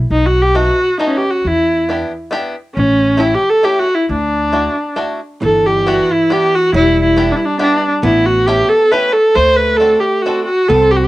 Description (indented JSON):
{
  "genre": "musette waltz",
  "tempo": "136 BPM",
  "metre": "3/4",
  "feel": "straight",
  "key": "D major, G major from 5.4 s",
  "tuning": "A4 = 440 Hz",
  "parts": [
    { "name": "upright bass", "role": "bass", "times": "0.0-11.1 s", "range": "E1 to E2", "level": "-18 LUFS", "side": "equal", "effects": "transformer saturation" },
    { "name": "warm viola", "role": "melody", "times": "0.1-11.1 s", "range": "C#4 to C5", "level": "-12 LUFS", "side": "equal", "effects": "cassette tape" },
    { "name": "bluegrass banjo", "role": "accompaniment", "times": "0.5-10.5 s", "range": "A3 to A4", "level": "-20 LUFS", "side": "left 1 dB", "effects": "cassette tape" },
    { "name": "archtop guitar, miked and amplified", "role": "second line", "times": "5.4-11.1 s", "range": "E3 to C4", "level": "-21 LUFS", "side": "right 3 dB", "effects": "cassette tape" }
  ],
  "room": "light reverb",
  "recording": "home recording on cassette",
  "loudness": "-11 LUFS",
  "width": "side -17 dB against mid",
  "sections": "0.0-5.4 A section; 5.4-11.1 B section",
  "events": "none",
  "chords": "0.1 B7; 1.4 Em7; 2.8 A7; 4.1 Dadd9; 5.4 G6; 6.7 Em7; 8.0 A7; 9.4 D7",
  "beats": "| 0.11 0.56 1.00 | 1.44 1.88 2.32 | 2.76 3.20 3.64 | 4.08 4.52 4.96 | 5.41 5.85 6.29 | 6.73 7.17 7.61 | 8.04 8.48 8.93 | 9.37 9.81 10.26 | 10.70"
}